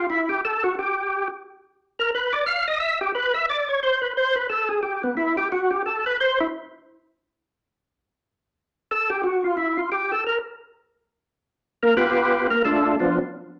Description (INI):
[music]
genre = jazz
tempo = 177 BPM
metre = 4/4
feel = swing 62% on 8ths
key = G mixolydian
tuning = A4 = 439 Hz
[part]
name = percussive tonewheel organ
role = solo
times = 0.0-6.5, 8.9-13.2 s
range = F3 to F5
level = -23 LUFS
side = equal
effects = slow rotary speaker, chorus vibrato
[sound]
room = wet club reverb, RT60 0.9 s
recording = none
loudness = -23 LUFS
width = mono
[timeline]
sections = 0.0-8.2 A section; 8.2-13.6 A section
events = tonewheel organ solo 0.0-8.2, 8.2-13.6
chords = 0.0 N.C.; 10.9 G7; 12.3 Dm; 13.0 Bdim/F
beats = | 0.07 0.41 0.74 1.08 | 1.42 1.76 2.10 2.44 | 2.78 3.11 3.45 3.79 | 4.13 4.47 4.81 5.15 | 5.48 5.82 6.16 6.50 | 6.84 7.18 7.52 7.86 | 8.20 8.54 8.88 9.22 | 9.56 9.90 10.24 10.58 | 10.92 11.26 11.60 11.94 | 12.28 12.62 12.96